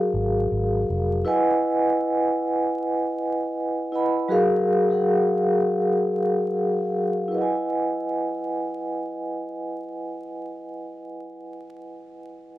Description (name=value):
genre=lo-fi hip hop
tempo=79 BPM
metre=4/4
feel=swing 59% on 16ths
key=E major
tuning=A4 = 441 Hz
part: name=vibraphone with soft mallets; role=accompaniment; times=0.0-12.6 s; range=F#3 to B5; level=-22 LUFS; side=equal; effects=cassette tape
part: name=vintage muted fingered electric bass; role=bass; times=0.1-1.2 s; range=E#1 to G#1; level=-26 LUFS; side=equal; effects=none
room=light reverb, small room ambience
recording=dry, gritty hardware recording, transformer saturation, vinyl crackle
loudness=-21 LUFS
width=side -15 dB against mid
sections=0.0-7.3 A section; 7.3-10.4 B section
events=none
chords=0.0 F#maj9; 1.3 Emaj9; 4.3 F#maj9; 7.3 Emaj9